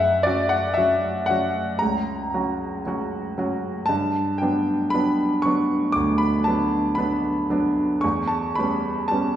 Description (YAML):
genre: classical, romantic nocturne for solo piano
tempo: 58 BPM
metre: 4/4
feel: rubato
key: unclear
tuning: A4 = 441 Hz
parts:
  - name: clear concert grand piano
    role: solo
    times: 0.0-9.4 s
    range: C#2 to D6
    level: -20 LUFS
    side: equal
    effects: none
room: wet recital hall reverb, RT60 1.5 s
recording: recorded in a church or concert hall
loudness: -20 LUFS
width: side -11 dB against mid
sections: 0.0-9.4 A section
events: none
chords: 0.0 F#; 3.9 Gmaj7; 8.0 C#m7b5/E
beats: 0.75 1.80 2.85 | 3.90 4.93 5.96 6.97 | 8.03 9.10